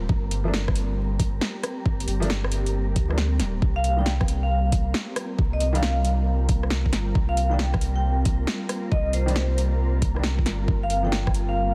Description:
future garage; 136 BPM; 4/4; swing 66% on 16ths; A4 = 437 Hz
ethereal airy pad; sustained chords; 0.0-11.7 s; G3 to Bb4; -35 LUFS; equal; ensemble chorus, built-in reverb, sidechain pumping
warm sub bass; bass; 0.0-11.7 s; D1 to D2; -26 LUFS; equal; tube saturation, sidechain pumping
wind-like tuned noise texture; texture; 0.0-11.7 s; Bb3 to Bb4; -42 LUFS; equal; built-in reverb
electronic kick drum; drums; 0.1-11.3 s; -26 LUFS; equal; overdrive
garage drum kit; drums; 0.3-11.5 s; hi-hat, rim click, snare drum; -32 LUFS; equal; overdrive
felt-muted upright piano; accompaniment; 0.4-11.2 s; Eb3 to D4; -36 LUFS; equal; sidechain pumping, analog delay
vibraphone with medium mallets; melody; 3.8-11.7 s; C5 to G5; -31 LUFS; equal; analog delay
light reverb, digital ambience; dense, heavily limited modern master, vinyl crackle; -24 LUFS; mono
0.0-11.7 A section
kick drops out 3.2-3.6
0.0 Gm7; 3.6 C7(no3); 10.7 Gm7
| 0.09 0.53 0.97 1.42 | 1.86 2.30 2.74 3.18 | 3.62 4.06 4.50 4.94 | 5.38 5.83 6.27 6.71 | 7.15 7.59 8.03 8.47 | 8.91 9.36 9.80 10.24 | 10.68 11.12 11.56

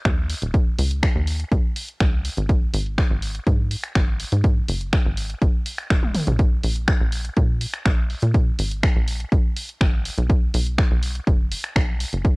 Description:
melodic techno; 123 BPM; 4/4; straight; A4 = 439 Hz
tight sequencer bass; bass; 0.1-12.4 s; Eb1 to Bb2; -24 LUFS; equal; sidechain pumping
electronic kick drum; drums; 0.1-12.3 s; -19 LUFS; equal; overdrive, cassette tape
punchy analog drum machine; drums; 0.1-12.3 s; finger snaps, hi-hat, toms; -27 LUFS; equal; overdrive, cassette tape
digital ambience; home recording on cassette; -19 LUFS; side -29 dB against mid
0.0-12.4 A section
drum fill 6.0-6.4
0.05 | 0.54 1.03 1.52 2.00 | 2.49 2.98 3.47 3.96 | 4.44 4.93 5.42 5.91 | 6.39 6.88 7.37 7.86 | 8.35 8.83 9.32 9.81 | 10.30 10.78 11.27 11.76 | 12.25

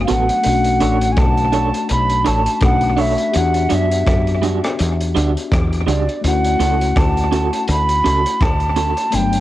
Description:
lovers rock reggae; 83 BPM; 4/4; swing 57% on 16ths; D major; A4 = 442 Hz
breathy hollow jazz flute; melody; 0.0-9.4 s; D5 to B5; -19 LUFS; right 1 dB; cassette tape, tape echo
mellow tine electric piano; accompaniment; 0.0-9.4 s; F#3 to G4; -22 LUFS; left 7 dB; medium stereo tremolo, cassette tape
woody fretless electric bass; bass; 0.0-9.4 s; G1 to F#2; -19 LUFS; equal
electric guitar through a small old amp; stabs; 0.1-8.9 s; G3 to C#5; -22 LUFS; right 6 dB; tremolo, cassette tape
crunchy breakbeat drum kit; drums; 0.1-9.4 s; hi-hat, kick drum, rim click; -21 LUFS; equal; cassette tape, analog delay
moderate spring reverb, RT60 1.9 s, studio ambience; home recording on cassette; -14 LUFS; side -14 dB against mid
0.0-9.4 A section
0.5 Bm9; 3.3 Em9; 6.2 Dmaj7
| 0.45 1.18 1.90 2.62 | 3.35 4.07 4.79 5.51 | 6.24 6.96 7.68 8.40 | 9.13

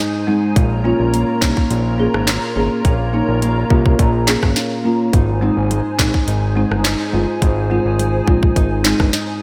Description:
dancehall; 105 BPM; 4/4; straight; Ab major; A4 = 440 Hz
hollow soft pad; sustained chords; 0.0-9.4 s; Eb4 to Bb5; -28 LUFS; equal; ensemble chorus, sidechain pumping
nylon-string guitar; arpeggios; 0.0-9.4 s; Ab2 to F4; -25 LUFS; equal; digital delay
folk marimba with soft mallets; accompaniment; 0.3-9.0 s; Ab3 to Ab4; -22 LUFS; equal
fat analog bass; bass; 0.6-9.1 s; G1 to C2; -22 LUFS; equal
island pop drum kit; drums; 0.6-9.3 s; handclaps, hi-hat, kick drum, rim click, snare drum; -19 LUFS; equal; gated reverb
moderate lush hall reverb, RT60 1.9 s; bright 1980s-style digital production; -16 LUFS; mono
0.0-9.4 A section
0.0 Ab; 0.6 Bbm; 5.1 Ab
| 0.56 1.13 1.71 2.28 | 2.85 3.42 3.99 4.56 | 5.13 5.71 6.28 6.85 | 7.42 7.99 8.56 9.13

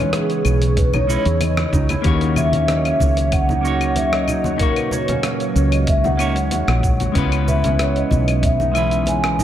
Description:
sunset chillout; 94 BPM; 4/4; straight; A4 = 441 Hz
vibraphone with soft mallets; melody; 0.0-9.4 s; G#4 to G#5; -22 LUFS; left 1 dB; analog delay
clean electric guitar; accompaniment; 0.0-9.4 s; A#2 to E5; -24 LUFS; moving between left 7 dB and right 6 dB; auto-pan, dub echo
lush unison pad; sustained chords; 0.0-9.4 s; C#3 to C#5; -27 LUFS; right 1 dB; chorus
concert harp; arpeggios; 0.0-9.4 s; A#3 to C#5; -28 LUFS; right 3 dB; dub echo
dusty soul sampler-style drum kit; drums; 0.1-9.4 s; cabasa, claves, hi-hat, rim click; -27 LUFS; left 2 dB
woody fretless electric bass; bass; 0.4-9.4 s; A#1 to E2; -19 LUFS; equal; tube saturation, lush chorus
electronic kick drum; drums; 0.8-8.6 s; -20 LUFS; equal
congas; percussion; 0.9-9.4 s; -28 LUFS; left 2 dB
moderate spring reverb, RT60 2.6 s; echo-heavy mix; -15 LUFS; side -11 dB against mid
0.0-9.4 A section
0.0 C#m9; 2.0 D#m7; 7.2 C#m9
0.13 0.77 1.41 | 2.05 2.69 3.32 3.96 | 4.60 5.24 5.88 6.51 | 7.15 7.79 8.43 9.07

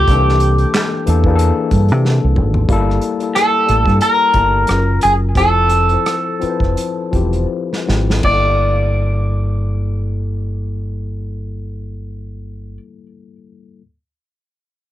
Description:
R&B, neo-soul; 78-92 BPM; 4/4; swing 57% on 16ths; G dorian; A4 = 439 Hz
electric guitar through a small old amp; melody; 0.0-12.8 s; G4 to D5; -16 LUFS; equal; cassette tape
tine electric piano; accompaniment; 0.0-13.8 s; Eb3 to A5; -22 LUFS; left 6 dB; medium stereo tremolo
deep dub fingered electric bass; bass; 0.0-12.8 s; E1 to C3; -16 LUFS; right 1 dB; tube saturation
unplugged drum kit; drums; 0.1-8.4 s; crash cymbal, handclaps, hi-hat, kick drum, rim click, snare drum, toms; -20 LUFS; right 1 dB
light reverb; home recording on cassette; -13 LUFS; side -13 dB against mid
0.0-2.7 A section; 2.7-8.2 B section; 8.2-11.3 C section
drum fill 2.0-2.7, 7.5-8.2; slowing down 2.7-8.2
0.1 C13; 2.7 Gm69; 4.7 F#maj7; 5.3 Fmaj7; 8.2 Gm69
| 0.08 0.73 1.38 2.03 | 2.68 3.34 4.00 4.67 | 5.34 6.04 6.75 7.48 | 8.24 9.00 9.77 10.54

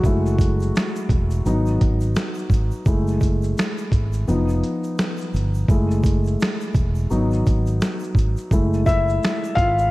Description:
lo-fi hip hop; 85 BPM; 4/4; swing 59% on 16ths; F# dorian; A4 = 440 Hz
felt-muted upright piano; accompaniment; 0.0-9.9 s; F3 to E#5; -23 LUFS; left 1 dB; cassette tape
mellow fretless electric bass; bass; 0.0-9.9 s; E1 to G#1; -21 LUFS; equal
dusty soul sampler-style drum kit; drums; 0.0-9.9 s; finger snaps, hi-hat, kick drum, shaker, snare drum; -21 LUFS; equal; overdrive, vintage 12-bit sampler grit
egg shaker; percussion; 0.0-9.9 s; -49 LUFS; right 7 dB
light reverb, digital ambience; cassette tape; -18 LUFS; side -19 dB against mid
0.0-9.9 A section
felt piano solo 0.0-9.9
0.0 F#m9; 1.5 G#m7; 2.9 F#m9; 4.3 Gaug7/F; 5.7 F#m9; 7.1 G#m7; 8.5 F#m9
| 0.04 0.74 1.45 2.16 | 2.86 3.57 4.28 4.98 | 5.69 6.39 7.10 7.80 | 8.51 9.22

